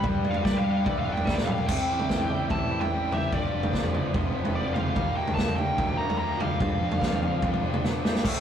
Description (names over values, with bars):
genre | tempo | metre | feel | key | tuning
indie rock | 146 BPM | 4/4 | straight | unclear | A4 = 440 Hz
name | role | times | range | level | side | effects
nasal lead guitar with a parked wah | melody | 0.0-7.8 s | D5 to Bb5 | -31 LUFS | equal | overdrive
overdriven electric guitar | riff | 0.0-8.4 s | G2 to B4 | -33 LUFS | left 6 dB | none
raw garage guitar | riff | 0.0-8.4 s | G2 to B4 | -33 LUFS | right 3 dB | overdrive
fuzz fingered electric bass | bass | 0.0-8.3 s | F1 to G3 | -31 LUFS | equal | overdrive
vintage drum kit | drums | 0.0-8.3 s | crash cymbal, kick drum, snare drum, toms | -27 LUFS | equal | none
tine electric piano | second line | 4.6-7.8 s | D4 to Bb4 | -43 LUFS | left 4 dB | none
room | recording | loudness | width
moderate studio ambience, RT60 0.5 s | rough rehearsal-room recording, tube saturation | -24 LUFS | side -8 dB against mid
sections
0.0-1.7 A section; 1.7-8.2 B section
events
lead electric guitar solo 0.0-1.7; drum fill 1.3-1.7, 7.8-8.2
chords
0.0 Gadd9; 1.7 C; 3.3 G7; 5.0 Ebmaj7; 6.6 G7(no3)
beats
| 0.04 0.45 0.86 1.27 | 1.68 2.09 2.50 2.92 | 3.33 3.74 4.15 4.56 | 4.97 5.38 5.79 6.20 | 6.61 7.02 7.43 7.84 | 8.25